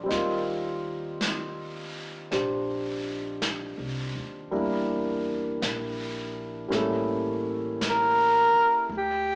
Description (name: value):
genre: jazz ballad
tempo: 54 BPM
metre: 4/4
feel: swing 67% on 8ths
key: unclear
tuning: A4 = 438 Hz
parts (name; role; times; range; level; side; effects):
- clear upright piano; accompaniment; 0.0-8.9 s; G3 to D5; -29 LUFS; equal; none
- upright bass; bass; 0.0-9.4 s; A1 to E2; -40 LUFS; equal; none
- jazz brush drum kit; drums; 0.1-9.4 s; brushed snare drum, hi-hat, snare drum; -34 LUFS; equal; none
- breathy alto saxophone; melody; 7.9-9.4 s; G4 to Bb4; -20 LUFS; equal; none
room: moderate large studio reverb, RT60 1.2 s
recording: band playing live in one room, small speaker sound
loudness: -24 LUFS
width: side -34 dB against mid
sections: 0.0-9.4 A section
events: none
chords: 0.1 Eb6; 4.5 Em7b5; 6.7 A7b9